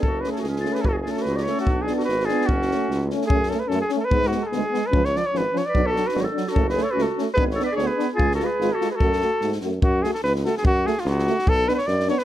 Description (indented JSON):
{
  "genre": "balkan folk, Balkan brass band",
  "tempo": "147 BPM",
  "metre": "2/4",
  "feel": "swing 55% on 16ths",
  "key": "F# harmonic minor",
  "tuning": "A4 = 444 Hz",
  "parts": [
    { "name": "mellow cornet", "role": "melody", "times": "0.0-12.2 s", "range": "E#4 to D5", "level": "-24 LUFS", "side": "equal", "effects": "none" },
    { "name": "mellow clarinet", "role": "second line", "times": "0.0-3.1, 5.7-9.6 s", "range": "C#4 to B4", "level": "-29 LUFS", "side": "right 4 dB", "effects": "none" },
    { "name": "mellow trombone", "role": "accompaniment", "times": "0.0-12.1 s", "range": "B3 to F#4", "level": "-29 LUFS", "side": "left 7 dB", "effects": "none" },
    { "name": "warm euphonium", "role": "accompaniment", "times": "0.0-12.2 s", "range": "E#3 to B3", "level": "-30 LUFS", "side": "right 7 dB", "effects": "none" },
    { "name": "clear tuba", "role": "bass", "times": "0.0-12.1 s", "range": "F#1 to G#2", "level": "-27 LUFS", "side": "equal", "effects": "none" },
    { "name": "compact cocktail drum kit", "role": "percussion", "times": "0.0-12.2 s", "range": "kick drum, snare drum", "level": "-25 LUFS", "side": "equal", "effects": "none" }
  ],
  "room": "little or no reverb",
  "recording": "close, detailed microphones",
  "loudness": "-20 LUFS",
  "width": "side -12 dB against mid",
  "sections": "0.0-3.3 A section; 3.3-9.8 B section; 9.8-12.2 A section",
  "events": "none",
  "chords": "0.0 F#m; 1.7 Bm; 2.5 F#m; 4.1 G#dim; 4.9 C#; 5.7 Bm; 6.6 F#m; 7.4 G#dim; 8.2 C#; 9.0 F#m; 11.5 Bm"
}